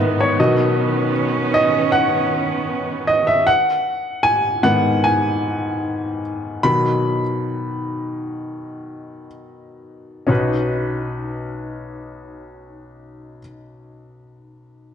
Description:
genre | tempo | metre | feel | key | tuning
pop | 60-78 BPM | 4/4 | straight | B major | A4 = 441 Hz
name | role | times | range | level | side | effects
clear upright piano | accompaniment | 0.0-14.9 s | B1 to B5 | -18 LUFS | left 1 dB | none
rich studio string section | sustained chords | 0.0-3.4 s | G#2 to C#4 | -22 LUFS | right 4 dB | none
room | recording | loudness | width
moderate lush hall reverb, RT60 2.3 s | dark, warm production, nothing above 10.9 kHz | -17 LUFS | side -8 dB against mid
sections
0.0-10.3 A section; 10.3-14.2 B section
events
upright piano solo 0.0-10.3; slowing down 3.5-10.3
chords
0.4 Badd9; 3.5 G#m; 6.6 B; 10.3 Badd9

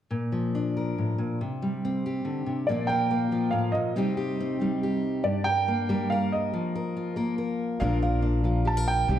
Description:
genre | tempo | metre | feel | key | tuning
folk | 140 BPM | 3/4 | straight | unclear | A4 = 441 Hz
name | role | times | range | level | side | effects
fingerpicked steel-string acoustic guitar | accompaniment | 0.1-9.2 s | G2 to Bb4 | -26 LUFS | left 1 dB | none
warm upright piano | melody | 2.7-9.2 s | D5 to A5 | -28 LUFS | right 3 dB | none
upright bass | bass | 7.8-9.2 s | Bb1 to C2 | -25 LUFS | equal | none
room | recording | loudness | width
moderate scoring stage reverb, RT60 1.7 s | dark, warm production | -24 LUFS | side -10 dB against mid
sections
0.1-2.7 A section; 2.7-9.2 B section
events
none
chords
0.1 Bb; 1.4 C5; 2.7 Bb5; 4.0 Cm; 5.2 Gm; 6.5 Fsus4; 7.8 Bb

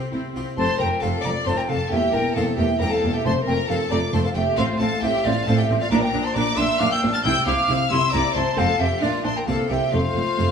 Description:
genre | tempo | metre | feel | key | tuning
classical, baroque-style concerto movement with solo episodes | 135 BPM | 3/4 | straight | F major | A4 = 441 Hz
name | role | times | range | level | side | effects
rich chamber violin section | melody | 0.0-10.5 s | G4 to A6 | -29 LUFS | left 2 dB | none
silver concert flute | melody | 0.0-10.5 s | C5 to F6 | -25 LUFS | equal | none
rich chamber violin section | second line | 0.0-10.5 s | E4 to A5 | -26 LUFS | left 3 dB | none
clear symphonic viola section | accompaniment | 0.0-10.4 s | A3 to E4 | -28 LUFS | equal | none
harpsichord | accompaniment | 0.0-10.5 s | E2 to Bb4 | -30 LUFS | left 1 dB | none
rich studio cello section | bass | 0.1-10.5 s | E2 to C3 | -27 LUFS | right 2 dB | none
rich studio double bass section | bass | 0.1-10.5 s | E1 to C2 | -27 LUFS | right 2 dB | none
room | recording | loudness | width
wet recital hall reverb, RT60 1.3 s | small room ambience | -19 LUFS | side -7 dB against mid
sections
0.6-10.5 A section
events
none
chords
0.1 C; 0.6 F; 1.9 C7/E; 3.3 F; 4.6 F/A; 5.9 Bb; 7.2 C; 8.6 F; 9.0 Bb; 9.5 C7; 9.9 F

